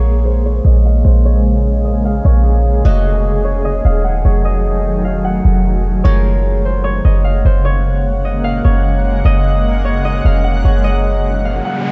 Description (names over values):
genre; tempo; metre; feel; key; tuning
hip hop; 150 BPM; 4/4; half-time; unclear; A4 = 441 Hz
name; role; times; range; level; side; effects
concert harp; melody; 0.0-11.9 s; C5 to Gb5; -24 LUFS; equal; low-pass filter, digital delay
granular cloud pad; sustained chords; 0.0-11.9 s; Db3 to Gb5; -22 LUFS; equal; built-in reverb, low-pass filter
clean 808-style bass; bass; 0.0-11.6 s; Eb1 to Bb1; -15 LUFS; equal; none
qanun; texture; 0.0-11.9 s; F3 to Eb5; -33 LUFS; equal; none
riser; sound effects; 11.2-11.9 s; none; -27 LUFS; equal; none
room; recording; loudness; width
digital ambience; nothing above 7.8 kHz; -14 LUFS; mono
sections
0.0-11.9 A section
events
filter sweep 0.0-11.9; riser 11.2-11.9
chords
0.0 Bbm7; 2.9 F7b9; 6.0 Gbmaj9